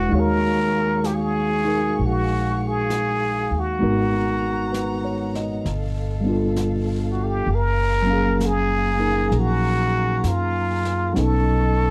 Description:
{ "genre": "jazz ballad", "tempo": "65 BPM", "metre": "4/4", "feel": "swing 66% on 8ths", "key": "Eb minor", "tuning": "A4 = 442 Hz", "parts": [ { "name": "trumpet with plunger mute", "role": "melody", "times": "0.0-11.9 s", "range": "F4 to Bb4", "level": "-26 LUFS", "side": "equal", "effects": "slapback echo" }, { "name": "tine electric piano", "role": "accompaniment", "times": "0.0-11.9 s", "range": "Gb3 to F5", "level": "-26 LUFS", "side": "equal", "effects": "overdrive" }, { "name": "dark chamber string section", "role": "sustained chords", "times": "0.0-11.9 s", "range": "Gb4 to Db6", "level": "-38 LUFS", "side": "equal", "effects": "none" }, { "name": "upright bass", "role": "bass", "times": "0.0-11.9 s", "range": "Gb1 to Gb2", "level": "-26 LUFS", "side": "equal", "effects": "none" }, { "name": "jazz brush drum kit", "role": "drums", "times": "0.1-11.9 s", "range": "brushed snare drum, hi-hat, snare drum", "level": "-41 LUFS", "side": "equal", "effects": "none" } ], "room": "little or no reverb", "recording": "dry, close 1970s-style studio recording", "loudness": "-22 LUFS", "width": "mono", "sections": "0.1-11.9 A section", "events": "none", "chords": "0.1 Ebm11; 3.8 Abm9; 5.6 G9; 7.5 Gbmaj9; 11.2 B9" }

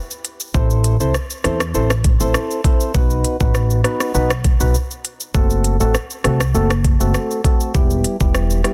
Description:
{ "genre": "dancehall", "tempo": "100 BPM", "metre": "4/4", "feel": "straight", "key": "unclear", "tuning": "A4 = 440 Hz", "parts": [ { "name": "island pop drum kit", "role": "drums", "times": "0.1-8.7 s", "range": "hi-hat, kick drum, rim click, shaker", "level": "-21 LUFS", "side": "equal", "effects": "overdrive" }, { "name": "percussive organ stab", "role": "accompaniment", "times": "0.5-8.7 s", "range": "G3 to C5", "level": "-24 LUFS", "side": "equal", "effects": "chorus" }, { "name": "upright bass", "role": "bass", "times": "0.5-8.6 s", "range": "E1 to E2", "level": "-20 LUFS", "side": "equal", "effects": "none" } ], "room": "little or no reverb", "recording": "dense, heavily limited modern master", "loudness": "-17 LUFS", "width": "mono", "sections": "0.0-8.7 A section", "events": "break 0.0-0.5", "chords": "0.0 N.C.; 0.5 Am; 2.9 B; 5.3 F#dim; 7.7 Em" }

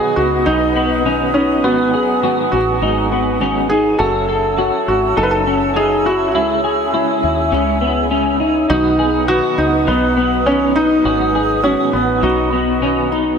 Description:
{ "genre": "dream pop", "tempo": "102 BPM", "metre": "4/4", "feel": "straight", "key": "unclear", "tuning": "A4 = 443 Hz", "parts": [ { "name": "felt-muted upright piano", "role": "melody", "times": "0.0-13.1 s", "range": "B3 to B4", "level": "-17 LUFS", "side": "right 1 dB", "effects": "ping-pong delay" }, { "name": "electric guitar at the edge of break-up", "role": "accompaniment", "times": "0.0-13.4 s", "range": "G#2 to B4", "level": "-22 LUFS", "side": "right 4 dB", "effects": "tremolo, analog chorus" }, { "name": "mellow small flute group", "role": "sustained chords", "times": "0.0-13.4 s", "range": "B4 to E6", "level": "-21 LUFS", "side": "right 1 dB", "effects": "none" }, { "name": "clean electric guitar", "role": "arpeggios", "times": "0.0-13.4 s", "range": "B3 to A4", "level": "-19 LUFS", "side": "left 4 dB", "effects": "ensemble chorus, ping-pong delay" }, { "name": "fingered electric bass", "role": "bass", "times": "0.2-13.4 s", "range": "F#1 to D#2", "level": "-24 LUFS", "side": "equal", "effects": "none" } ], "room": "moderate huge ambient reverb, RT60 5.3 s", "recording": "none", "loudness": "-13 LUFS", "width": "side -6 dB against mid", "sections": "0.0-13.4 A section", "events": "none", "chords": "0.0 B; 1.6 G#m7; 4.0 F#m7; 6.3 C#m; 8.7 B; 11.1 G#m7; 12.2 B" }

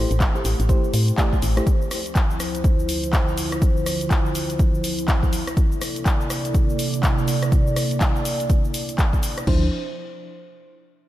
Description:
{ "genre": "deep house", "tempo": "123 BPM", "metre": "4/4", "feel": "swing 60% on 16ths", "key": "D minor", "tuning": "A4 = 440 Hz", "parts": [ { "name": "dark analog pad", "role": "sustained chords", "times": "0.0-9.7 s", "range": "D2 to D5", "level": "-26 LUFS", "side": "right 1 dB", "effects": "chorus, phaser, sidechain pumping" }, { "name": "mellow FM electric piano", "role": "stabs", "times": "0.0-1.7, 9.5-9.7 s", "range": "F3 to D5", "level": "-28 LUFS", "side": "equal", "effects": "chorus, cassette tape, sidechain pumping, diffuse ambient delay" }, { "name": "woody FM bass", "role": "bass", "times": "0.0-1.6, 9.5-9.7 s", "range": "A1 to A2", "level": "-20 LUFS", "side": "equal", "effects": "sidechain pumping" }, { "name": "deep house drum kit", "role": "drums", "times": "0.1-9.6 s", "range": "crash cymbal, handclaps, hi-hat, rim click, shaker", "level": "-28 LUFS", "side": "left 1 dB", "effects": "none" }, { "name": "electronic kick drum", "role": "drums", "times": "0.2-9.6 s", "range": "none", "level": "-19 LUFS", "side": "equal", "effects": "none" } ], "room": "light reverb", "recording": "none", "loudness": "-18 LUFS", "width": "side -14 dB against mid", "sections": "0.0-9.5 A section; 9.5-11.1 B section", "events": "none", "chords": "0.0 Am7; 1.7 Dm9; 5.3 C13; 9.5 Dm9" }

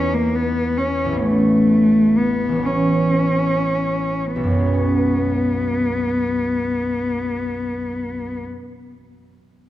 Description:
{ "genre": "classical, impressionist duo for cello and harp", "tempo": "33-50 BPM (dotted quarters)", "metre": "6/8", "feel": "rubato", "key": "unclear", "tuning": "A4 = 440 Hz", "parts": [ { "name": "warm cello", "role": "melody", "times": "0.0-8.4 s", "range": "A3 to C#4", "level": "-19 LUFS", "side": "left 1 dB", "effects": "none" }, { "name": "concert harp", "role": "accompaniment", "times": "0.0-8.8 s", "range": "A1 to C#4", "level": "-21 LUFS", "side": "right 1 dB", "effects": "none" } ], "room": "moderate concert hall reverb, RT60 2.3 s", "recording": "none", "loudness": "-17 LUFS", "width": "side -14 dB against mid", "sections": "0.0-4.4 A section; 4.4-7.8 B section", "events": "slowing down 0.0-4.4", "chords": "0.0 E6; 1.2 A9; 4.4 Bsus2" }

